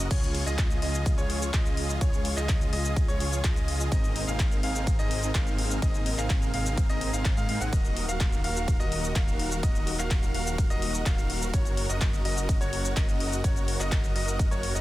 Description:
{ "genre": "EDM, festival progressive house", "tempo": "126 BPM", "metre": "4/4", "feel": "straight", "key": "Db major", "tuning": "A4 = 442 Hz", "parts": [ { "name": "lush unison pad", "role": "sustained chords", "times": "0.0-14.8 s", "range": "C3 to F5", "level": "-37 LUFS", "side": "equal", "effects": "chorus, sidechain pumping" }, { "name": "bright grand piano", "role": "arpeggios", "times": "0.0-14.8 s", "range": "Db5 to Gb5", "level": "-36 LUFS", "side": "equal", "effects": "sidechain pumping, tape echo" }, { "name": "dense compressed supersaw", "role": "riff", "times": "0.0-14.8 s", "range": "C4 to Gb5", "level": "-34 LUFS", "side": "right 1 dB", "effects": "sidechain pumping, tape echo" }, { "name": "wide detuned saw bass", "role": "bass", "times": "0.0-14.8 s", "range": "Eb1 to Ab2", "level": "-31 LUFS", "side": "equal", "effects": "chorus, sidechain pumping" }, { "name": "big-room dance drum kit", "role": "drums", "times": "0.0-14.8 s", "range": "crash cymbal, handclaps, hi-hat, ride cymbal, shaker", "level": "-34 LUFS", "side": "left 2 dB", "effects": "small room ambience" }, { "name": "electronic kick drum", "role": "drums", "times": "0.1-14.5 s", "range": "none", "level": "-26 LUFS", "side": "equal", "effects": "small room ambience" } ], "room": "little or no reverb", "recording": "dense, heavily limited modern master", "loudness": "-24 LUFS", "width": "side -16 dB against mid", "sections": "0.0-14.8 A section", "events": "none", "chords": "0.1 Db; 3.9 Abadd9; 7.7 Ebm; 11.5 Gb" }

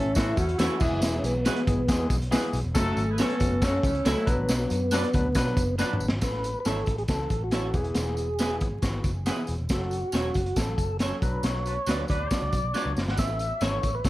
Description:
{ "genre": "uptempo 1960s-style soul", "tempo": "138 BPM", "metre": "4/4", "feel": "straight", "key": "A major", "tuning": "A4 = 440 Hz", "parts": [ { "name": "tonewheel organ", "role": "melody", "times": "0.0-14.1 s", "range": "A3 to F#5", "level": "-30 LUFS", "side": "equal", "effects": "overdrive, slow rotary speaker, tube saturation, tape echo" }, { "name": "dark horn section", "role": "second line", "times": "0.0-4.4, 11.7-12.4 s", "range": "F#3 to B4", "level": "-35 LUFS", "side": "right 1 dB", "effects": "none" }, { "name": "vibraphone with soft mallets", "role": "second line", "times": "0.0-5.7 s", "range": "A4 to F#5", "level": "-40 LUFS", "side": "right 2 dB", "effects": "none" }, { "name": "barky tine electric piano", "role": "accompaniment", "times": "0.0-14.1 s", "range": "E3 to C#5", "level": "-34 LUFS", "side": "left 3 dB", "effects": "none" }, { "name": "vintage muted picked electric bass", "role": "bass", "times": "0.0-14.1 s", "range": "E1 to B2", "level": "-30 LUFS", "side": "equal", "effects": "none" }, { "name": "crunchy breakbeat drum kit", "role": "drums", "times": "0.2-14.1 s", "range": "crash cymbal, hi-hat, kick drum, snare drum, toms", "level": "-28 LUFS", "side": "equal", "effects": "none" }, { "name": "tambourine", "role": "percussion", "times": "0.2-14.1 s", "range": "none", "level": "-40 LUFS", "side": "right 2 dB", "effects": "none" }, { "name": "electric guitar through a small old amp", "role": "stabs", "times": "0.6-13.8 s", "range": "B3 to D5", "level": "-33 LUFS", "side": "right 4 dB", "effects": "wide subtle chorus" } ], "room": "light reverb", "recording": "vinyl crackle", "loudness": "-24 LUFS", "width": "side -17 dB against mid", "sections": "0.0-6.2 A section; 6.2-14.1 B section", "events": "drum fill 5.8-6.2, 12.7-13.2; band accent 11.4-13.2", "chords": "0.0 A; 0.8 E; 2.8 F#m; 4.3 Bm; 6.2 A; 7.7 E; 9.7 F#m; 11.2 Bm; 13.2 A" }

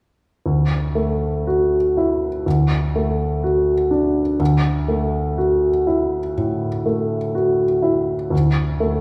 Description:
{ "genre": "classical, impressionist solo piano", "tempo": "61 BPM", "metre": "4/4", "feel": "rubato", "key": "D major", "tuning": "A4 = 441 Hz", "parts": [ { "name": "clear grand piano", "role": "solo", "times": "0.5-9.0 s", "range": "D2 to F#4", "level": "-19 LUFS", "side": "equal", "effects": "none" } ], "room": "wet recital hall reverb, RT60 1.8 s", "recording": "recorded in a church or concert hall", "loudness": "-19 LUFS", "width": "mono", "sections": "0.4-9.0 A section", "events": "none", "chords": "0.4 Dadd9; 2.5 D; 4.4 Dadd9" }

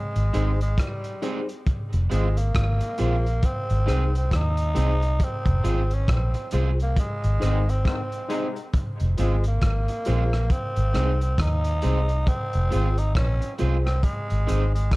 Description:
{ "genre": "roots reggae", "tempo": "68 BPM", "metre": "4/4", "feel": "swing 59% on 16ths", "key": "F minor", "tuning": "A4 = 436 Hz", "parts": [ { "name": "growling tenor saxophone", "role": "melody", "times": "0.0-15.0 s", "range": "G3 to Eb4", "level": "-30 LUFS", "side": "equal", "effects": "tape echo" }, { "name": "vintage muted fingered electric bass", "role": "bass", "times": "0.2-14.9 s", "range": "F1 to Eb2", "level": "-22 LUFS", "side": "equal", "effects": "none" }, { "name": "crunchy breakbeat drum kit", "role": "drums", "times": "0.2-15.0 s", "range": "hi-hat, kick drum, rim click", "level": "-27 LUFS", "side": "equal", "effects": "none" }, { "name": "electric guitar at the edge of break-up", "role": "accompaniment", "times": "0.3-14.6 s", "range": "Ab3 to Ab4", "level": "-35 LUFS", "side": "right 5 dB", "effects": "tape echo" }, { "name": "reed electric piano", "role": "stabs", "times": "0.3-14.7 s", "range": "Eb4 to C5", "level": "-32 LUFS", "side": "left 2 dB", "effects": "medium tremolo" }, { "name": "brilliant trombone section", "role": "second line", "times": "7.4-8.6 s", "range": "Ab2 to Eb4", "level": "-34 LUFS", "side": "left 5 dB", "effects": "tape echo" } ], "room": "studio reverb", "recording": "dark, warm production", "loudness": "-21 LUFS", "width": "side -21 dB against mid", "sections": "0.0-15.0 A section", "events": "band accent 5.2-8.7", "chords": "0.0 Ab; 1.7 Fm; 3.4 Ab; 5.2 Fm; 7.0 Ab; 8.7 Fm; 10.5 Ab; 12.3 Fm; 14.0 Ab" }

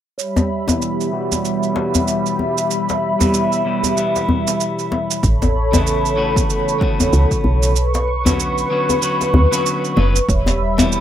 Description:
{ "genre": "organic downtempo", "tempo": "95 BPM", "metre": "4/4", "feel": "swing 58% on 16ths", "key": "E dorian", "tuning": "A4 = 440 Hz", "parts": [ { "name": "warm analog pad", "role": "sustained chords", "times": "0.2-11.0 s", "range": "G3 to C#6", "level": "-19 LUFS", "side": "right 1 dB", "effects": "chorus, sidechain pumping, plate reverb" }, { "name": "electronic cabasa and hi-hat", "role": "drums", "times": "0.2-11.0 s", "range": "none", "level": "-24 LUFS", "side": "right 10 dB", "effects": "overdrive" }, { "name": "bronze singing bowl", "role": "texture", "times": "0.2-11.0 s", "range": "C#5", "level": "-33 LUFS", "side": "right 3 dB", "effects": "plate reverb" }, { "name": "djembe", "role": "percussion", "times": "0.4-10.9 s", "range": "none", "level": "-19 LUFS", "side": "left 2 dB", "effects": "none" }, { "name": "electric guitar at the edge of break-up", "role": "accompaniment", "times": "0.7-11.0 s", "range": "B2 to B4", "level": "-24 LUFS", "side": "left 3 dB", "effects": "sidechain pumping, low-pass filter, ping-pong delay, plate reverb" }, { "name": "woody FM bass", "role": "bass", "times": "5.2-11.0 s", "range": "E1 to D2", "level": "-17 LUFS", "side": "equal", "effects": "sidechain pumping" }, { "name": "electronic kick drum", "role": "drums", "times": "5.2-10.4 s", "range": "none", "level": "-20 LUFS", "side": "equal", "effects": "overdrive" } ], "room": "light reverb", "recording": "rough home demo mix", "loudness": "-15 LUFS", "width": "side -10 dB against mid", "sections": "0.2-10.3 A section", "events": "filter sweep on clean electric guitar 0.2-10.3; kick drops out 7.8-10.3", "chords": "0.2 Em; 5.2 Aadd9; 7.8 Bmadd9; 10.3 Em" }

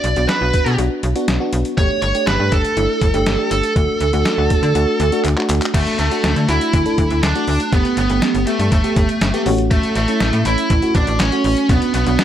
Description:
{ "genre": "synth-pop", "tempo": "121 BPM", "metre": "4/4", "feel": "straight", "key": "unclear", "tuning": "A4 = 440 Hz", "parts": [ { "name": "high-gain lead guitar", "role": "melody", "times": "0.0-12.2 s", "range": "A3 to D5", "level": "-19 LUFS", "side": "right 2 dB", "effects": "distortion, slapback echo" }, { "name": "FM electric piano with soft pad layer", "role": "accompaniment", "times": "0.0-12.2 s", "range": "A3 to A4", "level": "-22 LUFS", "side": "left 1 dB", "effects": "chorus" }, { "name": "slap-like FM bass", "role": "bass", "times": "0.0-12.2 s", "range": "G1 to D3", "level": "-19 LUFS", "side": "equal", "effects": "none" }, { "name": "trip hop sampler-style drum kit", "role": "drums", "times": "0.0-12.2 s", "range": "crash cymbal, handclaps, hi-hat, kick drum, snare drum", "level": "-20 LUFS", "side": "equal", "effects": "none" } ], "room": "light reverb", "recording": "none", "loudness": "-14 LUFS", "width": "side -10 dB against mid", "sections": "0.0-5.7 A section; 5.7-12.2 B section", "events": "drum fill 5.2-5.7", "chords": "0.0 Bm; 1.8 Gsus2; 3.8 D; 7.7 Gadd9; 9.5 A6; 11.7 Bm" }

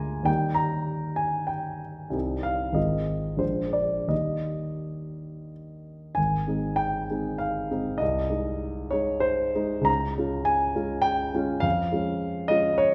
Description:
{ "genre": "classical, romantic character piece for solo piano", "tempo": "85-104 BPM", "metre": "3/4", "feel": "rubato", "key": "Eb major, Ab major from 6.2 s", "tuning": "A4 = 440 Hz", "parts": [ { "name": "warm concert grand piano", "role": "solo", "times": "0.0-12.9 s", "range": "Ab1 to D6", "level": "-27 LUFS", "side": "equal", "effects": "none" } ], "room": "wet recital hall reverb, RT60 1.4 s", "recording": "recorded in a church or concert hall", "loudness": "-27 LUFS", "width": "mono", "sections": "0.0-6.2 A section; 6.2-12.9 B section", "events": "none", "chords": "0.3 Eb; 2.1 Cm; 2.8 Fm7/Ab; 3.4 Bb9; 4.1 Eb; 6.2 Ab; 8.0 Ab/C; 9.9 Db; 11.6 Db/F" }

